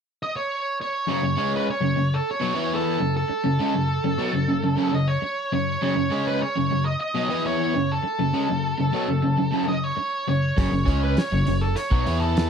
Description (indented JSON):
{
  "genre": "classic rock",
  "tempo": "101 BPM",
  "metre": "4/4",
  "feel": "straight",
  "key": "F# dorian",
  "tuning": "A4 = 440 Hz",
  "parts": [
    { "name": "octave-fuzz lead guitar", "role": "melody", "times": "0.2-12.5 s", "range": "A4 to D#5", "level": "-26 LUFS", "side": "right 2 dB", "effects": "distortion" },
    { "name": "crunchy overdriven guitar", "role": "riff", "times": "1.1-12.5 s", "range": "F#2 to E4", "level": "-25 LUFS", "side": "left 9 dB", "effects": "spring reverb" },
    { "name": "raw garage guitar", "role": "riff", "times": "1.1-12.5 s", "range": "F#2 to E4", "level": "-26 LUFS", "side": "right 9 dB", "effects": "overdrive" },
    { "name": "growling fingered electric bass", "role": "bass", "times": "10.6-12.5 s", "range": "F#1 to E2", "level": "-24 LUFS", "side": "equal", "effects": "overdrive" },
    { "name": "damped 70s drum kit", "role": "drums", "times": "10.6-12.5 s", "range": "hi-hat, kick drum, snare drum", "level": "-23 LUFS", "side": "equal", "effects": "none" }
  ],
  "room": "little or no reverb",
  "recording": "dry, close 1970s-style studio recording",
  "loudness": "-21 LUFS",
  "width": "side -7 dB against mid",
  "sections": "0.0-1.1 A section; 1.1-12.5 B section",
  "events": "none",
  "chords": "0.0 N.C.; 1.1 F#m"
}